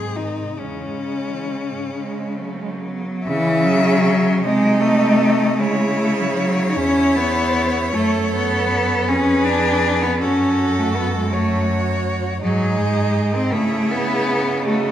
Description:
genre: classical, lyrical piece for cello ensemble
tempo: 45-55 BPM (dotted quarters)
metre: 6/8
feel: rubato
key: C# minor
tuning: A4 = 439 Hz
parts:
  - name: rich cello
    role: melody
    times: 0.0-14.9 s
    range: C#4 to E5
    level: -24 LUFS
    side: left 4 dB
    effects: none
  - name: rich cello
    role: second line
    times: 0.0-14.9 s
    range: G#3 to A4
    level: -26 LUFS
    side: right 6 dB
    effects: none
  - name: rich cello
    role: accompaniment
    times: 0.0-14.9 s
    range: E2 to D#4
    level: -19 LUFS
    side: equal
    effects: none
  - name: rich cello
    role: bass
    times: 0.0-14.9 s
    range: E2 to C#3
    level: -23 LUFS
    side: right 1 dB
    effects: none
room: wet recital hall reverb, RT60 1.7 s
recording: none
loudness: -16 LUFS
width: side -11 dB against mid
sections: 0.0-3.3 A section; 3.3-14.9 B section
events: none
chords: 0.0 G#7; 0.6 C#m/E; 3.3 C#m; 4.4 Cm6; 5.6 C#m; 7.9 F#m; 9.1 Fdim7; 10.2 F#m; 12.4 G#5; 13.5 C#m

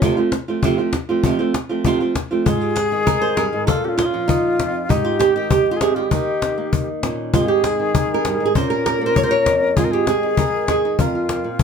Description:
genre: flamenco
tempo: 197 BPM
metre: 4/4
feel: straight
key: unclear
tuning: A4 = 440 Hz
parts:
  - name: flamenco guitar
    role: melody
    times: 0.0-11.6 s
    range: F2 to Db5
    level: -18 LUFS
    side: right 3 dB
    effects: none
  - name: cajon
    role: percussion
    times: 0.0-11.6 s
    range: none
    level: -21 LUFS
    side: left 4 dB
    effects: none
  - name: wooden flute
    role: second line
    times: 2.5-11.6 s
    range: Eb4 to Bb4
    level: -22 LUFS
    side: left 4 dB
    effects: none
room: light reverb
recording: faint mains hum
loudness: -16 LUFS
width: side -6 dB against mid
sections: 0.0-2.5 A section; 2.5-11.6 B section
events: none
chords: 0.0 F; 2.5 Ab5; 3.7 Bbm; 4.9 Ab5; 6.1 Eb7; 7.3 Ab; 8.6 Bbm; 9.8 Ab; 11.0 Fsus4

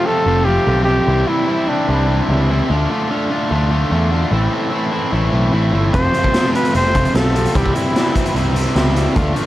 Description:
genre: indie rock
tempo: 148 BPM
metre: 4/4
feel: straight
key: unclear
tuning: A4 = 440 Hz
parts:
  - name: warm trumpet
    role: melody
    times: 0.0-2.5, 5.9-8.3 s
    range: D4 to C5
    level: -19 LUFS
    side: equal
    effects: tape echo
  - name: distorted electric guitar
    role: riff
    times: 0.0-9.5 s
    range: F2 to F4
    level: -18 LUFS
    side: equal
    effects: distortion
  - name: picked electric bass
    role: bass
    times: 0.3-9.3 s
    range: F1 to E2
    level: -17 LUFS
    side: equal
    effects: none
  - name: raw garage drum kit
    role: drums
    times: 5.9-9.5 s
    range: hi-hat, kick drum, snare drum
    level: -18 LUFS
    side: equal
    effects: none
room: light reverb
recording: vinyl crackle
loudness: -14 LUFS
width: side -15 dB against mid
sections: 0.0-9.5 A section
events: none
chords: 0.0 Fadd9; 1.1 Cadd9; 2.7 Dm; 4.3 Am; 5.9 F; 7.5 C

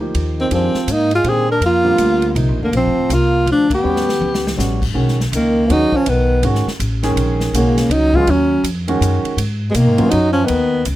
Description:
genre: modal jazz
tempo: 162 BPM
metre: 3/4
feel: swing 63% on 8ths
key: G# dorian from 5.0 s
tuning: A4 = 440 Hz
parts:
  - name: warm concert grand piano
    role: accompaniment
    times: 0.0-10.1 s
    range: C3 to G#4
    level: -21 LUFS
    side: right 2 dB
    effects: none
  - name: upright bass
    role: bass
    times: 0.0-11.0 s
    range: D1 to B2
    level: -18 LUFS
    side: equal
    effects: none
  - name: swinging big-band drum kit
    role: drums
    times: 0.1-11.0 s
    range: crash cymbal, hi-hat, kick drum, ride cymbal, snare drum, toms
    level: -27 LUFS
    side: equal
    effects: none
  - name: breathy tenor saxophone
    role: melody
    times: 0.4-10.8 s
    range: G#3 to Bb4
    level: -15 LUFS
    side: right 1 dB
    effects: none
  - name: warm trombone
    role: second line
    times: 0.4-10.8 s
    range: B2 to D4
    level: -22 LUFS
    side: left 3 dB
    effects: none
room: little or no reverb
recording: none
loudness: -13 LUFS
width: side -14 dB against mid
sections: 0.0-5.0 A section; 5.0-11.0 B section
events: band accent 3.7; drum fill 3.8-4.6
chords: 0.0 F9sus4; 0.5 Bbadd9; 3.8 Eb7alt; 5.0 G#m7; 7.2 D#m7; 9.4 G#m9

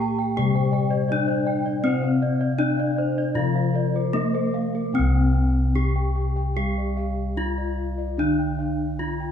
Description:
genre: Javanese gamelan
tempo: 74-85 BPM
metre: 4/4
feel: straight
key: C slendro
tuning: A4 = 439 Hz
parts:
  - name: gamelan-type bronze metallophone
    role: melody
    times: 0.0-9.3 s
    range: Bb3-40c to G4+20c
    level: -26 LUFS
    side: left 1 dB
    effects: none
  - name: gamelan-type bronze metallophone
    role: accompaniment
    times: 0.0-9.3 s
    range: C3 to Bb3-40c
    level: -28 LUFS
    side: right 1 dB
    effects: none
  - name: gamelan-type bossed gongs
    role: arpeggios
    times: 0.0-9.3 s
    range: Bb4-40c to G5+20c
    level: -32 LUFS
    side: left 6 dB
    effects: none
  - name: gamelan-type bronze metallophone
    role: arpeggios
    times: 0.0-4.9 s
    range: Bb4-40c to Bb5-40c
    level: -30 LUFS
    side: right 2 dB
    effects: none
  - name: gamelan-type bossed gongs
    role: bass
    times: 0.0-9.3 s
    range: C2 to Bb4-40c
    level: -25 LUFS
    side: left 2 dB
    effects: none
room: moderate recital hall reverb, RT60 1.4 s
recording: small room reverb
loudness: -21 LUFS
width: side -8 dB against mid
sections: 0.0-4.9 A section; 4.9-9.3 B section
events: none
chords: none

